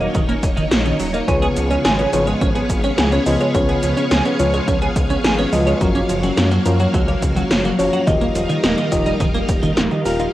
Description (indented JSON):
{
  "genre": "synthwave",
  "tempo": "106 BPM",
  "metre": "4/4",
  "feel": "straight",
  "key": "unclear",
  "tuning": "A4 = 441 Hz",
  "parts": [
    { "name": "string machine, full ensemble", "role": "sustained chords", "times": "0.0-10.3 s", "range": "F#3 to E#5", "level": "-24 LUFS", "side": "equal", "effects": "ensemble chorus, sidechain pumping, cassette tape" },
    { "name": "soft round pluck", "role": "arpeggios", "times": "0.0-10.3 s", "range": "E#3 to A#4", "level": "-25 LUFS", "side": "right 2 dB", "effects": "chorus, cassette tape, tape echo" },
    { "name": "twelve-string electric guitar", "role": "riff", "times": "0.0-10.3 s", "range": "D#3 to C#5", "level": "-22 LUFS", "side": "right 1 dB", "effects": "analog chorus, cassette tape, tape echo" },
    { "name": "dark detuned saw bass", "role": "bass", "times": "0.0-10.3 s", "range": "D#1 to F#2", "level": "-22 LUFS", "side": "equal", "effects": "none" },
    { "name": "80s electronic pad drums", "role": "drums", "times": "0.0-10.3 s", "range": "cabasa, hi-hat, snare drum", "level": "-22 LUFS", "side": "equal", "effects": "overdrive, cassette tape" },
    { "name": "electronic kick drum", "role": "drums", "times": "0.1-9.6 s", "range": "none", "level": "-21 LUFS", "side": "equal", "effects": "overdrive, cassette tape" },
    { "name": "FM electric piano with soft pad layer", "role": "stabs", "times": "1.3-10.3 s", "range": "C#3 to E#5", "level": "-22 LUFS", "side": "left 2 dB", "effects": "chorus, tremolo, cassette tape, tape echo" }
  ],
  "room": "light reverb, digital ambience",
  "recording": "home recording on cassette",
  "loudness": "-15 LUFS",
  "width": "side -14 dB against mid",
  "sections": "0.0-10.3 A section",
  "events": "kick drops out 9.8-10.3",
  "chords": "0.0 D#m7; 1.3 C#7; 5.8 F#maj7; 8.1 D#add9",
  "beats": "0.15 0.71 | 1.28 1.85 2.41 2.98 | 3.54 4.11 4.68 5.24 | 5.81 6.37 6.94 7.51 | 8.07 8.64 9.20 9.77"
}